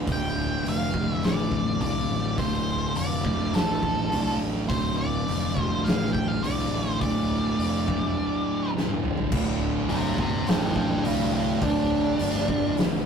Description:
stoner and doom metal; 104 BPM; 4/4; straight; D minor; A4 = 440 Hz
thick fuzz guitar; riff; 0.0-13.1 s; D2 to D3; -33 LUFS; left 7 dB; distortion
thick fuzz guitar; riff; 0.0-13.1 s; D2 to D3; -28 LUFS; right 3 dB; distortion
fuzz fingered electric bass; bass; 0.0-13.1 s; D1 to C2; -30 LUFS; equal; overdrive
octave-fuzz lead guitar; melody; 0.1-12.7 s; D4 to G5; -29 LUFS; equal; distortion
oversized low-tuned drum kit; drums; 0.1-12.9 s; crash cymbal, hi-hat, kick drum, snare drum, toms; -29 LUFS; left 1 dB
fuzz guitar; riff; 9.3-13.1 s; D2 to D3; -33 LUFS; equal
moderate studio reverb, RT60 0.5 s; rough rehearsal-room recording, tube saturation; -23 LUFS; side -6 dB against mid
0.0-9.3 A section; 9.3-13.1 B section
drum fill 8.8-9.3; lead electric guitar solo 9.3-13.1
0.0 Dm; 9.3 D5
| 0.07 0.65 1.23 1.81 | 2.38 2.96 3.54 4.12 | 4.70 5.28 5.86 6.44 | 7.02 7.60 8.18 8.75 | 9.33 9.91 10.48 11.06 | 11.63 12.21 12.78

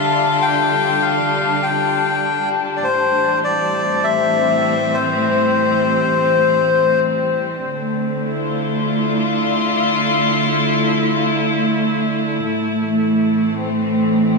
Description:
ambient; 100 BPM; 4/4; straight; D minor; A4 = 439 Hz
melodica; melody; 0.0-7.0 s; C5 to G5; -18 LUFS; left 4 dB; dub echo
warm chamber string section; sustained chords; 0.0-14.4 s; A2 to F4; -17 LUFS; left 1 dB
wet spring reverb, RT60 2.0 s; echo-heavy mix, studio reverb; -15 LUFS; side -2 dB against mid
0.0-7.6 A section; 7.6-14.4 A section
0.0 Dmadd11; 2.8 Am7; 7.6 Dm9; 12.4 Am
| 0.44 1.04 1.64 2.24 | 2.84 3.44 4.04 4.64 | 5.24 5.84 6.44 7.04 | 7.64 8.24 8.84 9.44 | 10.04 10.64 11.24 11.84 | 12.44 13.04 13.64 14.24

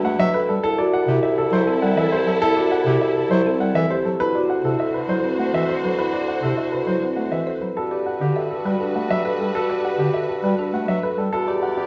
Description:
classical, minimalist pattern music; 101 BPM; 3/4; straight; G major; A4 = 439 Hz
dark baby grand piano; melody; 0.0-11.9 s; G4 to F#5; -26 LUFS; equal
dark bass clarinet; accompaniment; 0.0-11.3 s; C3 to A3; -28 LUFS; equal
dark symphonic violin section; sustained chords; 0.0-11.9 s; E4 to D5; -33 LUFS; equal
marimba with soft mallets; arpeggios; 0.0-11.9 s; C4 to B4; -26 LUFS; equal
warm bassoon; bass; 0.0-11.9 s; C2 to G2; -29 LUFS; equal
wet recital hall reverb, RT60 1.5 s; nothing above 8.0 kHz; -21 LUFS; mono
0.0-11.9 A section
0.0 Em9; 0.6 C6; 4.2 D9; 7.8 Gmaj9; 11.3 Em9
0.04 | 0.63 1.23 1.82 | 2.42 3.01 3.60 | 4.20 4.79 5.39 | 5.98 6.58 7.17 | 7.76 8.36 8.95 | 9.54 10.14 10.73 | 11.33

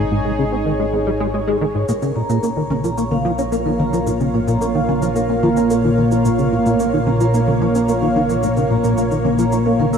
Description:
ambient, sequencer-driven space music; 110 BPM; 4/4; straight; Bb minor; A4 = 440 Hz
lush unison pad; sustained chords; 0.0-10.0 s; Bb2 to F5; -18 LUFS; equal; chorus
plucky analog bass; riff; 0.0-10.0 s; Ab2 to Db4; -20 LUFS; equal; ensemble chorus, tape echo
analog drone; bass; 0.0-10.0 s; Ab1 to Bb1; -27 LUFS; equal; chorus
vibraphone with medium mallets; arpeggios; 1.9-10.0 s; Bb4 to E6; -25 LUFS; equal; auto-pan, tape echo
electronic cabasa and toms; percussion; 1.9-10.0 s; -27 LUFS; equal; tape echo
wet lush hall reverb, RT60 2.8 s; dreamy mix soaked in reverb; -15 LUFS; side -7 dB against mid
0.0-10.0 A section
filter sweep on analog synth bass 0.0-10.0
0.0 Absus4; 1.9 Bbm
0.25 0.80 1.34 | 1.89 2.43 2.98 3.52 | 4.07 4.61 5.16 5.70 | 6.25 6.79 7.34 7.89 | 8.43 8.98 9.52

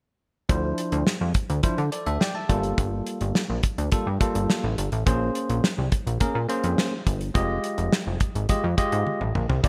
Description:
early-eighties boogie funk; 105 BPM; 4/4; straight; D minor; A4 = 440 Hz
bell-like tine electric piano; accompaniment; 0.5-9.7 s; F3 to A5; -30 LUFS; equal
plucky analog bass; bass; 0.5-9.7 s; F1 to D3; -28 LUFS; equal
damped 70s drum kit; drums; 0.5-9.7 s; hi-hat, kick drum, snare drum, toms; -27 LUFS; equal; gated reverb
light reverb, studio reverb; bright 1980s-style digital production; -25 LUFS; mono
0.5-9.7 A section
drum fill 9.1-9.6
0.5 Dm9; 2.5 Gm9; 5.1 Bbm9; 7.4 Fm9
| 0.49 1.07 1.64 2.21 | 2.78 3.35 3.92 4.49 | 5.07 5.64 6.21 6.78 | 7.35 7.92 8.49 9.07 | 9.64

